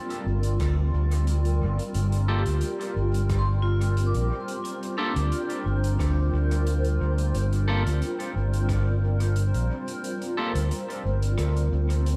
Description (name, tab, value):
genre	ambient dub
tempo	89 BPM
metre	4/4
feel	straight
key	G minor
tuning	A4 = 440 Hz
part	granular cloud pad	sustained chords	0.0-12.2 s	G3 to D5	-34 LUFS	equal	built-in reverb, subtle chorus
part	vibraphone with hard mallets	arpeggios	0.0-12.2 s	D4 to D6	-38 LUFS	equal	delay
part	soft-mallet drum kit	drums	0.1-12.2 s	hi-hat, rim click	-44 LUFS	equal	dub echo
part	overdriven fingered electric bass	bass	0.3-12.2 s	G1 to D2	-26 LUFS	equal	none
part	electronic kick drum	drums	0.6-8.8 s	none	-34 LUFS	equal	overdrive
part	clean electric guitar	stabs	2.3-10.5 s	Bb3 to A4	-36 LUFS	equal	vintage 12-bit sampler grit, dub echo
room	light reverb, studio reverb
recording	none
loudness	-25 LUFS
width	mono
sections	0.0-12.2 A section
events	kick drops out 10.0-12.2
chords	0.0 Gm7